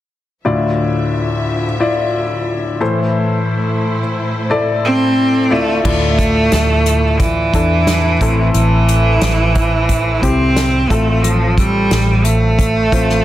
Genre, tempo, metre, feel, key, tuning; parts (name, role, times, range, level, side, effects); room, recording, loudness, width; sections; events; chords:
piano-driven pop; 89 BPM; 4/4; straight; A4 = 443 Hz
clear grand piano; accompaniment; 0.4-13.2 s; D2 to D5; -17 LUFS; left 2 dB
rich studio string section; sustained chords; 0.4-5.8 s; D2 to E5; -24 LUFS; equal
bright cello; melody; 4.9-13.2 s; E3 to C4; -15 LUFS; right 1 dB
vintage muted fingered electric bass; bass; 5.8-13.2 s; A1 to E2; -16 LUFS; equal
unplugged drum kit; drums; 5.8-13.2 s; crash cymbal, hi-hat, kick drum, snare drum; -18 LUFS; equal
moderate large studio reverb, RT60 1.3 s, small room reverb; dense, heavily limited modern master; -12 LUFS; side -13 dB against mid
0.4-5.8 A section; 5.8-13.2 B section
0.4 Dmadd9; 2.8 Am; 5.5 Dmadd9; 8.2 Am; 10.9 F